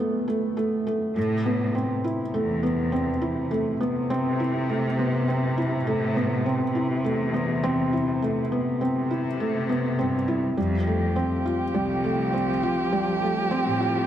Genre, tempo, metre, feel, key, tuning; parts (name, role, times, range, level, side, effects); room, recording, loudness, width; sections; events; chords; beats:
piano and strings electronica; 102 BPM; 4/4; straight; A4 = 439 Hz
felt-muted upright piano; riff; 0.0-14.1 s; G3 to F4; -24 LUFS; equal; tape echo
dark string quartet; sustained chords; 1.2-14.1 s; C3 to G4; -29 LUFS; equal
bright symphonic cello section; bass; 1.2-14.1 s; C2 to C3; -29 LUFS; left 1 dB
moderate huge ambient reverb, RT60 5.0 s; -22 LUFS; side -10 dB against mid
0.0-1.2 A section; 1.2-14.1 B section
break 0.0-1.2; build-up 0.0-1.2; drop 1.2-14.1
0.0 Amadd9; 10.6 Fadd9
0.58 | 1.17 1.75 2.34 2.93 | 3.52 4.11 4.70 5.28 | 5.87 6.46 7.05 7.64 | 8.22 8.81 9.40 9.99 | 10.58 11.16 11.75 12.34 | 12.93 13.52